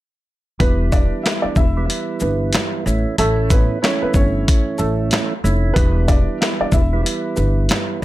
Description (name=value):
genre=hip hop, boom-bap hip-hop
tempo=93 BPM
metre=4/4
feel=swing 62% on 16ths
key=E dorian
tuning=A4 = 440 Hz
part: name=warm upright piano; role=melody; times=0.6-8.0 s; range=A3 to E5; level=-24 LUFS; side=equal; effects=high-pass filter, low-pass filter, digital delay
part: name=percussive tonewheel organ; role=accompaniment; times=0.6-8.0 s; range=E3 to E4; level=-23 LUFS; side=right 4 dB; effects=slow rotary speaker, cassette tape, high-pass filter, low-pass filter
part: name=upright bass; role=bass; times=0.6-8.0 s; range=E1 to A1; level=-19 LUFS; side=equal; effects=none
part: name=dusty soul sampler-style drum kit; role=drums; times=0.6-7.9 s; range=hi-hat, kick drum, shaker, snare drum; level=-17 LUFS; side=equal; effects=none
room=little or no reverb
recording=none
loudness=-15 LUFS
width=side -16 dB against mid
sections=0.6-8.0 A section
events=none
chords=0.6 Em; 2.9 A; 5.8 Em